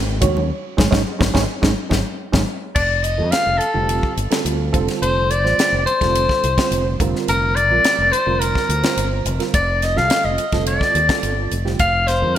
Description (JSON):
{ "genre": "electric jazz fusion", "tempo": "106 BPM", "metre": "4/4", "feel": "straight", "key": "F mixolydian", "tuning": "A4 = 439 Hz", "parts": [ { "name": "reed electric piano", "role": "accompaniment", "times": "0.0-12.4 s", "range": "D3 to Db5", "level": "-24 LUFS", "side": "right 6 dB", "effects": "ensemble chorus" }, { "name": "fingered electric bass", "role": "bass", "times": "0.0-12.3 s", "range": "F1 to F2", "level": "-22 LUFS", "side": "equal", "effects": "none" }, { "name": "tight funk drum kit", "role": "drums", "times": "0.2-12.4 s", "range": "crash cymbal, hi-hat, kick drum, ride cymbal, snare drum", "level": "-22 LUFS", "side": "left 1 dB", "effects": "gated reverb" }, { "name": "congas", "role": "percussion", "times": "0.2-2.5 s", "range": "none", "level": "-24 LUFS", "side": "left 4 dB", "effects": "none" }, { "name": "warm soprano saxophone", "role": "melody", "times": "2.7-12.4 s", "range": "A4 to F5", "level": "-18 LUFS", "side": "left 2 dB", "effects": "none" } ], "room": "moderate plate reverb, RT60 1.8 s, studio reverb", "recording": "bright 1980s-style digital production", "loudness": "-16 LUFS", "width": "side -11 dB against mid", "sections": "0.0-2.8 A section; 2.8-12.4 B section", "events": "band accent 0.5-2.8", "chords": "0.0 Absus4; 2.8 F69; 7.0 Bb69/F; 9.5 F13; 11.8 Bb6/F", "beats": "| 0.50 1.07 1.63 2.20 | 2.76 3.33 3.89 4.46 | 5.02 5.59 6.15 6.72 | 7.28 7.85 8.41 8.98 | 9.54 10.11 10.67 11.23 | 11.80 12.36" }